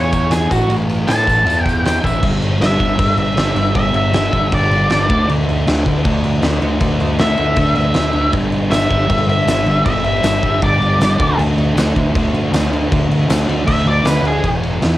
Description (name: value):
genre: garage rock duo or trio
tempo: 157 BPM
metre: 4/4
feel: straight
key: unclear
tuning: A4 = 440 Hz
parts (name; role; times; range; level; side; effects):
- octave-fuzz lead guitar; melody; 0.0-11.4, 13.7-14.4 s; F#4 to A5; -17 LUFS; equal; distortion
- fuzz guitar; riff; 0.0-15.0 s; E2 to A4; -18 LUFS; equal; distortion, cassette tape
- growling picked electric bass; bass; 0.0-15.0 s; E1 to A2; -19 LUFS; equal; overdrive
- oversized low-tuned drum kit; drums; 0.1-14.9 s; crash cymbal, kick drum, ride cymbal, snare drum; -18 LUFS; equal; cassette tape
- tambourine; percussion; 0.1-2.1, 8.7-14.2 s; none; -35 LUFS; left 5 dB; none
room: little or no reverb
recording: home recording on cassette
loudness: -13 LUFS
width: side -15 dB against mid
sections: 0.0-2.2 A section; 2.2-14.4 B section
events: none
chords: 0.0 E5; 0.5 A5; 1.5 E5; 2.0 A5; 2.2 G5; 5.1 D5; 8.3 G5; 11.2 D5; 14.4 E5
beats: 0.32 | 0.70 1.08 1.47 1.85 | 2.23 2.61 2.99 3.38 | 3.76 4.14 4.52 4.90 | 5.28 5.66 6.04 6.42 | 6.81 7.19 7.57 7.95 | 8.33 8.71 9.09 9.47 | 9.85 10.23 10.62 11.00 | 11.38 11.76 12.14 12.52 | 12.90 13.29 13.67 14.05 | 14.44 14.82